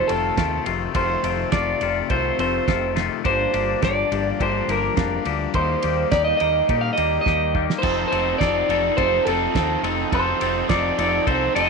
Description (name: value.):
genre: indie rock.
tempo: 105 BPM.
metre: 4/4.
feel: straight.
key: F mixolydian.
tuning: A4 = 440 Hz.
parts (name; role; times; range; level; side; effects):
electric guitar through a small old amp; melody; 0.0-11.7 s; A4 to F5; -22 LUFS; right 1 dB; phaser.
twangy electric guitar; riff; 0.0-11.7 s; F2 to A4; -24 LUFS; left 16 dB; wide subtle chorus.
growling fingered electric bass; bass; 0.1-11.7 s; F1 to Bb2; -28 LUFS; equal; overdrive.
cloth-damped thuddy drum kit; drums; 0.1-11.7 s; crash cymbal, kick drum, ride cymbal, snare drum; -28 LUFS; right 4 dB; none.
overdriven electric guitar; riff; 7.8-11.7 s; F3 to A4; -25 LUFS; right 15 dB; analog chorus.
room: little or no reverb.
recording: 1960s-style stereo with parts hard left and right.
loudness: -18 LUFS.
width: side -4 dB against mid.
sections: 0.0-11.7 A section.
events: drum fill 7.3-7.8.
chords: 0.0 F7; 3.2 Gm7; 5.5 Eb; 7.8 F7.